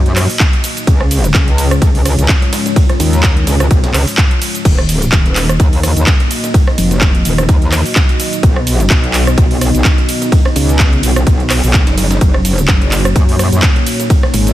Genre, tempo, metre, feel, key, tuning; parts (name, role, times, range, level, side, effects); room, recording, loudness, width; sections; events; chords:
bass house; 127 BPM; 4/4; swing 56% on 16ths; Eb minor; A4 = 441 Hz
dark analog pad; sustained chords; 0.0-14.5 s; Ab3 to Eb5; -20 LUFS; left 1 dB; chorus, sidechain pumping
metallic wobble bass; bass; 0.0-14.5 s; Eb1 to Gb2; -13 LUFS; equal; chorus, tube saturation, sidechain pumping
garage drum kit; drums; 0.1-14.5 s; cabasa, crash cymbal, handclaps, hi-hat, ride cymbal, rim click; -17 LUFS; right 1 dB; overdrive, small room ambience
breakbeat sampler-style drum kit; drums; 0.2-14.5 s; hi-hat, snare drum; -27 LUFS; right 1 dB
electronic kick drum; drums; 0.4-14.2 s; -11 LUFS; equal; overdrive, small room ambience
digital ambience; dense, heavily limited modern master; -9 LUFS; side -14 dB against mid
0.0-14.5 A section
0.0 Gb6; 0.9 Db; 4.7 Ebm; 8.4 B; 12.2 Gb6